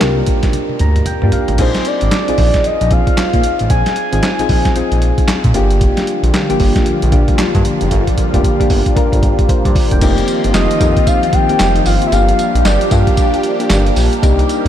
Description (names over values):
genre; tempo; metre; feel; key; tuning
R&B, new jack swing; 114 BPM; 4/4; swing 61% on 16ths; unclear; A4 = 440 Hz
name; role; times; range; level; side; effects
soft octave-layered synth lead; melody; 0.0-5.2, 10.5-13.4 s; Bb4 to Ab5; -19 LUFS; left 2 dB; chorus, phaser, analog delay
soft electric-piano-like synth keys; accompaniment; 0.0-14.7 s; Bb3 to Bb5; -18 LUFS; left 2 dB; chorus
smooth synth bass; bass; 0.0-14.7 s; E1 to Bb2; -16 LUFS; equal; none
boom bap sampler-style drum kit; drums; 0.0-14.7 s; crash cymbal, handclaps, hi-hat, kick drum, snare drum, tambourine, toms; -15 LUFS; equal; none
phased analog pad; sustained chords; 5.8-14.7 s; D3 to G4; -19 LUFS; right 1 dB; phaser, chorus
room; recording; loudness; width
light reverb, digital ambience; none; -11 LUFS; side -10 dB against mid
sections
0.0-1.6 A section; 1.6-10.0 B section; 10.0-14.7 C section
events
drum fill 0.5-1.6, 7.9-10.0; synth keys fill 0.5-1.6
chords
0.0 Gm7; 1.6 Bb9sus4; 5.5 Gm7; 10.0 F7sus4; 12.1 Gm7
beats
0.02 0.54 1.07 | 1.59 2.12 2.65 3.17 | 3.70 4.23 4.75 5.28 | 5.80 6.33 6.86 7.38 | 7.91 8.44 8.96 9.49 | 10.02 10.54 11.07 11.60 | 12.12 12.65 13.17 13.70 | 14.23